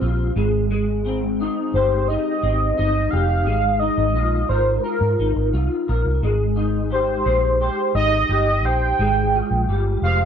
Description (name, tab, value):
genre	indie pop, bedroom pop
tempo	87 BPM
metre	4/4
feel	straight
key	Ab major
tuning	A4 = 440 Hz
part	electric guitar through a small old amp	accompaniment	0.0-10.3 s	Ab3 to C5	-23 LUFS	left 2 dB	ensemble chorus, vibrato effect
part	vintage muted fingered electric bass	bass	0.0-10.3 s	F1 to Ab2	-21 LUFS	right 1 dB	none
part	warm velvety synth lead	melody	1.7-10.3 s	Bb4 to G5	-20 LUFS	right 1 dB	lush chorus, slapback echo
room	little or no reverb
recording	dry, close 1970s-style studio recording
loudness	-18 LUFS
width	side -8 dB against mid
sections	0.0-10.3 A section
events	none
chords	0.4 Abmaj7; 3.5 Bb7sus4/Ab; 6.2 Abmaj7; 9.0 Fmadd9